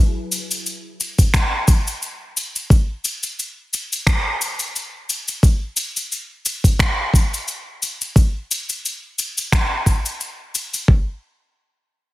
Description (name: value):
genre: sunset chillout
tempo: 88 BPM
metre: 4/4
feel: swing 55% on 16ths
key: none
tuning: none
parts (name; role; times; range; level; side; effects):
- cabasa and finger snaps; drums; 0.3-10.9 s; none; -22 LUFS; left 1 dB; none
- electronic kick drum; drums; 1.2-11.1 s; none; -14 LUFS; equal; none
room: little or no reverb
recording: heavily compressed radio sound, multiband compression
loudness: -18 LUFS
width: side -17 dB against mid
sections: 0.0-10.9 A section; 10.9-12.1 B section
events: none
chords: none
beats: 0.65 1.34 2.02 | 2.70 3.38 4.06 4.75 | 5.43 6.11 6.79 7.47 | 8.15 8.84 9.52 10.20 | 10.88